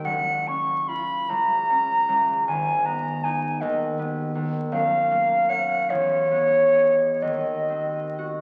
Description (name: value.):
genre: classical, impressionist duo for flute and harp.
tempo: 40-55 BPM (dotted quarters).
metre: 6/8.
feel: rubato.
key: unclear.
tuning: A4 = 435 Hz.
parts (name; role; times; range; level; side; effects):
concert flute; melody; 0.0-8.4 s; Db5 to Db6; -23 LUFS; equal; none.
concert harp; accompaniment; 0.0-8.4 s; Gb1 to F5; -32 LUFS; equal; none.
room: wet recital hall reverb, RT60 1.4 s.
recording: very old 78 rpm record, vinyl crackle.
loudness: -23 LUFS.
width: mono.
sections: 0.0-8.4 A section.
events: none.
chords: 0.1 Gbmaj7; 2.5 Abm6; 4.7 Gbmaj7; 5.9 Emaj7; 7.2 Ebm6.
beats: | 0.06 1.29 | 2.48 3.61 | 4.72 5.90 | 7.21.